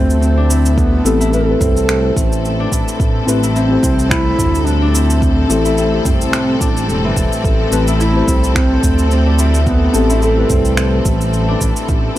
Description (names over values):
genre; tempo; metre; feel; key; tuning
organic downtempo; 108 BPM; 4/4; swing 55% on 16ths; A minor; A4 = 440 Hz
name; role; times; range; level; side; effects
breathy mellow low Native American-style wooden flute; melody; 0.0-11.1 s; B3 to A4; -19 LUFS; right 1 dB; analog delay
muted felt-like synth keys; accompaniment; 0.0-12.2 s; C4 to C5; -21 LUFS; left 3 dB; chorus, sidechain pumping, analog delay
clear symphonic string section; sustained chords; 0.0-12.2 s; A2 to A4; -22 LUFS; left 1 dB; sidechain pumping
Celtic harp; arpeggios; 0.0-12.2 s; E3 to A4; -21 LUFS; left 3 dB; analog delay
smooth synth bass; bass; 0.0-12.1 s; E1 to D2; -16 LUFS; right 1 dB; none
afro-pop drum kit; drums; 0.1-12.0 s; cabasa, finger snaps, toms; -22 LUFS; right 1 dB; none
electronic kick drum; drums; 0.8-12.0 s; none; -17 LUFS; right 1 dB; none
room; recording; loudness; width
small room ambience; dry, gritty hardware recording; -12 LUFS; side -14 dB against mid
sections
0.0-12.2 A section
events
none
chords
0.0 Am7